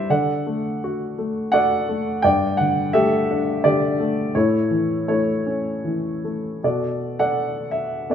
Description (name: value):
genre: classical, lyrical solo piano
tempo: 75-86 BPM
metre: 3/4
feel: rubato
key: unclear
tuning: A4 = 440 Hz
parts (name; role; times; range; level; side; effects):
- warm baby grand piano; solo; 0.0-8.1 s; G2 to G5; -19 LUFS; equal; none
room: wet recital hall reverb, RT60 1.4 s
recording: none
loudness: -19 LUFS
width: side -8 dB against mid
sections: 0.0-6.6 A section; 6.6-8.1 B section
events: none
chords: 0.1 D; 2.2 Gsus2; 4.3 A; 6.6 Bm7